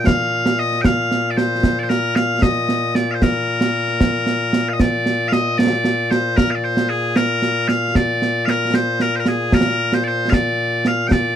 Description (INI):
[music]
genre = scottish traditional, Scottish pipe music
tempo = 76 BPM (dotted quarters)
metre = 6/8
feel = straight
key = Bb mixolydian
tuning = A4 = 440 Hz
[part]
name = loud bright bagpipes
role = melody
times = 0.0-11.4 s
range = Bb2 to G5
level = -18 LUFS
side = left 2 dB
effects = none
[part]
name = concert snare drum and concert bass drum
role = drums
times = 0.1-11.2 s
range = none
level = -18 LUFS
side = right 2 dB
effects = none
[sound]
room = light reverb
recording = dry, close 1970s-style studio recording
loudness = -16 LUFS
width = side -9 dB against mid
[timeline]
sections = 0.0-4.8 A section; 4.8-11.4 B section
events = none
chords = none